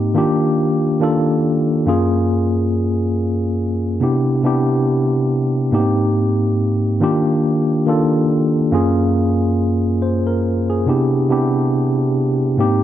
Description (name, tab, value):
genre	R&B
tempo	70 BPM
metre	4/4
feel	swing 58% on 16ths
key	unclear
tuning	A4 = 440 Hz
part	mellow tine electric piano	solo	0.0-12.8 s	Gb2 to C5	-15 LUFS	equal	fast stereo tremolo
room	light reverb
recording	none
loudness	-15 LUFS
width	side -11 dB against mid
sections	0.0-12.8 A section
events	none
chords	0.2 Ebmaj9; 1.9 Gbmaj9; 4.0 Cmaj9; 5.7 Abmaj9; 7.0 Ebmaj9; 8.7 Gbmaj9; 10.9 Cmaj9